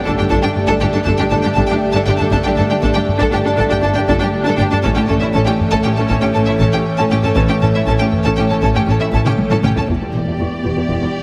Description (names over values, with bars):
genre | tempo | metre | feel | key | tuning
cinematic, hybrid orchestral and electronic film score | 119 BPM | 5/4 | straight | unclear | A4 = 440 Hz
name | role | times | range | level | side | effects
warm symphonic violin section | second line | 0.0-11.2 s | E4 to D5 | -25 LUFS | equal | none
airy breathy pad | sustained chords | 0.0-11.2 s | D3 to D5 | -23 LUFS | equal | chorus, low-pass filter
warm French horn section | sustained chords | 0.0-9.6 s | A3 to D4 | -26 LUFS | equal | low-pass filter
warm studio violin section | melody | 0.1-9.8 s | E5 to A5 | -26 LUFS | equal | low-pass filter
warm symphonic viola section | accompaniment | 0.1-11.1 s | B3 to E4 | -24 LUFS | equal | low-pass filter
rich symphonic cello section | bass | 0.1-11.1 s | E2 to A2 | -23 LUFS | equal | none
rich symphonic double bass section | bass | 0.1-10.9 s | E1 to A1 | -24 LUFS | equal | none
taiko ensemble | drums | 0.1-10.9 s | none | -24 LUFS | equal | none
warm concert grand piano | texture | 0.1-11.2 s | G3 to C#6 | -33 LUFS | equal | none
room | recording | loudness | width
wet scoring stage reverb, RT60 1.8 s | heavily compressed radio sound, multiband compression | -15 LUFS | mono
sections
0.0-9.9 A section; 9.9-11.2 B section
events
drum fill 9.3-9.9; filter sweep 9.9-11.2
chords
0.0 Gsus2; 4.8 A; 9.9 Em7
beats
0.31 0.81 1.32 1.82 | 2.33 2.83 3.33 3.84 4.34 | 4.85 5.35 5.86 6.36 6.86 | 7.37 7.87 8.38 8.88 9.38 | 9.89 10.39 10.90